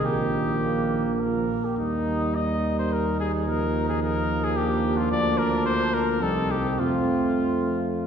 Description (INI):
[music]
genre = classical, brass quintet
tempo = 101-111 BPM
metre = 3/4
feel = rubato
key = Eb major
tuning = A4 = 439 Hz
[part]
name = clear trumpet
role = melody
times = 0.0-8.0 s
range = Eb4 to Eb5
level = -28 LUFS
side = left 3 dB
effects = none
[part]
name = clear flugelhorn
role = second line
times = 0.0-8.1 s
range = Bb3 to Bb4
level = -32 LUFS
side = right 4 dB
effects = none
[part]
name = mellow trombone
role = accompaniment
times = 0.0-8.1 s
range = Eb3 to A3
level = -30 LUFS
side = right 2 dB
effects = none
[part]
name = warm French horn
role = accompaniment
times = 0.0-8.1 s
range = Bb3 to C4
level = -28 LUFS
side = right 2 dB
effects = none
[part]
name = warm bass trombone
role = bass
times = 0.0-8.1 s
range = Bb1 to F2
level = -28 LUFS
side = right 1 dB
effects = none
[sound]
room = wet concert hall reverb, RT60 2.2 s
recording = heard from further back in the room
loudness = -22 LUFS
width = side -7 dB against mid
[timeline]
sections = 0.0-8.1 A section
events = none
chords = 0.0 Eb/Bb; 1.2 Bb5; 1.8 Eb; 3.5 Bb/Eb; 5.1 Bb/D; 6.2 Cm; 6.8 F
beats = | 0.04 0.62 1.20 | 1.78 2.35 2.92 | 3.47 4.02 4.57 | 5.11 5.65 6.22 | 6.79 7.39 7.98